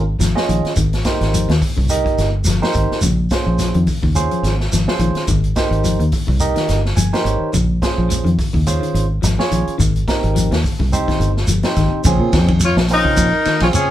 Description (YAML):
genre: afrobeat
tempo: 106 BPM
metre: 4/4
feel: swing 55% on 16ths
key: Bb dorian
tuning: A4 = 440 Hz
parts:
  - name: barky tine electric piano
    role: accompaniment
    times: 0.0-13.9 s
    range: C4 to Ab5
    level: -21 LUFS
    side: right 4 dB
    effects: none
  - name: fingered electric bass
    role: bass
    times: 0.0-13.8 s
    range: G1 to Bb2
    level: -17 LUFS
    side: equal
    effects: none
  - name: clean electric guitar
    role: arpeggios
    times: 0.2-13.9 s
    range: Db3 to F3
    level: -24 LUFS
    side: left 6 dB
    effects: none
  - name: vintage drum kit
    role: drums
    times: 0.2-13.9 s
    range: hi-hat, kick drum, ride cymbal, snare drum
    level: -21 LUFS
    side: equal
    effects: none
  - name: shekere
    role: percussion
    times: 0.2-13.9 s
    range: none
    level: -22 LUFS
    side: equal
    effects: none
  - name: warm tenor saxophone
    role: melody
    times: 12.6-13.9 s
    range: Db4 to F4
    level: -17 LUFS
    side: left 2 dB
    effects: none
  - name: growling trumpet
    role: second line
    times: 12.6-13.9 s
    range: Ab4 to Db5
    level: -22 LUFS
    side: right 2 dB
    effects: none
room: moderate studio reverb, RT60 0.5 s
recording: band playing live in one room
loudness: -14 LUFS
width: side -12 dB against mid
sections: 0.0-12.0 A section; 12.0-13.9 B section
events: tine electric piano fill 6.7-7.5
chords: 0.0 Bbm7; 0.8 Abmaj7; 3.0 Bbm7; 5.3 Abmaj7; 7.5 Bbm7; 9.8 Abmaj7; 12.0 Bbm7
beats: 0.21 | 0.77 1.33 1.90 2.46 | 3.03 3.59 4.16 4.72 | 5.29 5.85 6.41 6.98 | 7.54 8.11 8.67 9.23 | 9.80 10.36 10.92 11.49 | 12.05 12.61 13.17 13.73